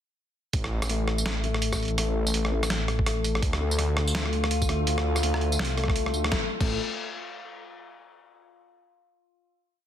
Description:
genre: half-time drum and bass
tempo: 166 BPM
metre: 4/4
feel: swing 60% on 16ths, half-time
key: unclear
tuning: A4 = 441 Hz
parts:
  - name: dark detuned saw bass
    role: bass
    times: 0.5-6.8 s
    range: A1 to D2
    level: -27 LUFS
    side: equal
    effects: tube saturation
  - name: boom bap sampler-style drum kit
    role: drums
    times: 0.5-6.7 s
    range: crash cymbal, hi-hat, rim click, snare drum, tambourine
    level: -30 LUFS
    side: right 1 dB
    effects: soft clipping on snare
  - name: electronic kick drum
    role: drums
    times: 0.5-6.7 s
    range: none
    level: -28 LUFS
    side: equal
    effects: none
  - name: felt-muted upright piano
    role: arpeggios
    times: 0.9-6.8 s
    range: A3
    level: -32 LUFS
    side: left 5 dB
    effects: dub echo
  - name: metallic inharmonic drone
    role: texture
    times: 3.8-6.3 s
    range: F4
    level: -35 LUFS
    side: right 1 dB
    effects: chorus, built-in reverb
room: light reverb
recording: dense, heavily limited modern master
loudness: -24 LUFS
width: side -10 dB against mid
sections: 0.5-6.3 drop; 6.3-7.8 final note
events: drop 0.5-6.3; band accent 6.2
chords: 0.5 N.C.; 3.4 Dm; 6.3 N.C.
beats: | 0.53 0.90 1.26 1.62 | 1.98 2.34 2.70 3.06 | 3.42 3.79 4.15 4.51 | 4.87 5.23 5.59 5.96 | 6.32 6.68

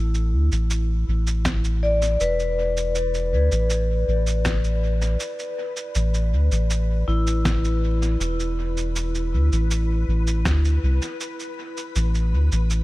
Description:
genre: ambient dub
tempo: 80 BPM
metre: 4/4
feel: straight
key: unclear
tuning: A4 = 441 Hz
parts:
  - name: vibraphone with medium mallets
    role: arpeggios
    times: 0.0-12.8 s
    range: E4 to D5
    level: -27 LUFS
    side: left 1 dB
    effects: tape echo
  - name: soft dub sub bass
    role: bass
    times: 0.0-12.8 s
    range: E1 to D2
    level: -20 LUFS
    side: equal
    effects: none
  - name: electronic shaker and snare drum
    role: drums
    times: 0.1-12.8 s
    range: none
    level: -30 LUFS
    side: right 1 dB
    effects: dub echo
  - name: soft additive organ-like pad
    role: sustained chords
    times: 0.4-12.8 s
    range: B4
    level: -40 LUFS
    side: left 10 dB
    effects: ensemble chorus, built-in reverb
  - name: electronic kick drum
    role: drums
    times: 1.5-10.6 s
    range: none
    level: -28 LUFS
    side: equal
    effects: none
room: little or no reverb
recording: vinyl crackle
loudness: -20 LUFS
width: side -18 dB against mid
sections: 0.0-12.8 A section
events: fade-in on ambient pad 0.0-12.8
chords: 0.0 Asus2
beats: 0.70 1.46 2.21 | 2.96 3.71 4.46 5.21 | 5.96 6.71 7.46 8.21 | 8.96 9.71 10.46 11.21 | 11.96 12.71

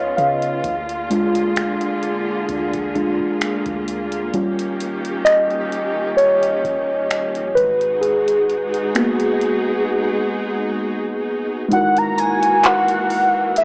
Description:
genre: contemporary R&B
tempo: 65 BPM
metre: 4/4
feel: swing 54% on 16ths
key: G# dorian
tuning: A4 = 440 Hz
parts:
  - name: muted felt-like synth keys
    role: accompaniment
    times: 0.0-13.6 s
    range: G3 to E#5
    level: -22 LUFS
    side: equal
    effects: chorus
  - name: clear studio string section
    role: sustained chords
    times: 0.0-13.6 s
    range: C#3 to G#4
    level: -26 LUFS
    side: equal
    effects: none
  - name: soft 808-style bass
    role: bass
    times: 0.0-13.6 s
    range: D#1 to C#3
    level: -39 LUFS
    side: equal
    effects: none
  - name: booming analog drum machine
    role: drums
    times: 0.2-13.6 s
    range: finger snaps, handclaps, hi-hat, kick drum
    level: -28 LUFS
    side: equal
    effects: cassette tape
  - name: warm velvety synth lead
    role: melody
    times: 11.7-13.6 s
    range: E5 to A#5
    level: -18 LUFS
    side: equal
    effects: chorus
  - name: glassy synth bell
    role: texture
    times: 12.2-13.6 s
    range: A#5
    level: -30 LUFS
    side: equal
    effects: none
room: moderate spring reverb, RT60 2.8 s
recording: home recording on cassette, small speaker sound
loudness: -19 LUFS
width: mono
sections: 0.0-11.7 A section; 11.7-13.6 B section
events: synth keys solo 0.0-11.7; break 9.9-11.7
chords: 0.0 C#9; 0.6 A#7/D; 4.3 D#7; 7.6 G#m7; 11.7 F#13/G#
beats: | 0.64 1.56 2.49 3.41 | 4.33 5.26 6.18 7.10 | 8.03 8.95 9.87 10.80 | 11.72 12.64 13.56

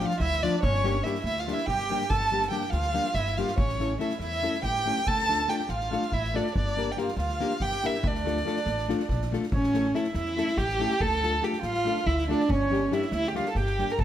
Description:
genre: balkan folk, Balkan wedding band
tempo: 283 BPM (eighths)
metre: 7/8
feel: straight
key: D harmonic minor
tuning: A4 = 442 Hz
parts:
  - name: dark violin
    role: melody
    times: 0.0-14.0 s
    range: C#4 to A5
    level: -28 LUFS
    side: right 1 dB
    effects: none
  - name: accordion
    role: second line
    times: 0.0-14.0 s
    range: C#4 to Bb5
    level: -33 LUFS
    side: right 6 dB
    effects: none
  - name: nylon-string guitar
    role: accompaniment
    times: 0.0-13.9 s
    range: F3 to Bb4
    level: -31 LUFS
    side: left 5 dB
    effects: none
  - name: upright bass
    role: bass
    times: 0.0-14.0 s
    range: G1 to E2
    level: -31 LUFS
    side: equal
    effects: none
  - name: soft-mallet drum kit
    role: percussion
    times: 0.0-14.0 s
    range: kick drum, snare drum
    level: -34 LUFS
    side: equal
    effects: none
room: moderate recital hall reverb, RT60 1.5 s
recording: none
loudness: -24 LUFS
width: side -11 dB against mid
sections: 0.0-9.5 A section; 9.5-14.0 A section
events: none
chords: 0.0 Dm; 0.6 Gm; 3.6 A; 5.1 Dm; 6.6 Gm; 8.0 Dm; 9.5 A; 11.0 Dm; 12.5 Gm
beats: 0.00 0.21 0.42 | 0.63 0.84 1.05 1.26 1.47 1.68 1.89 | 2.10 2.32 2.53 2.74 2.95 3.16 3.37 | 3.58 3.80 4.01 4.22 4.43 4.64 4.85 | 5.07 5.28 5.49 5.70 5.91 6.13 6.34 | 6.55 6.76 6.97 7.19 7.40 7.61 7.83 | 8.04 8.25 8.46 8.68 8.89 9.10 9.31 | 9.53 9.74 9.95 10.16 10.38 10.59 10.80 | 11.01 11.23 11.44 11.65 11.86 12.08 12.29 | 12.50 12.71 12.93 13.14 13.35 13.56 13.78 | 13.99

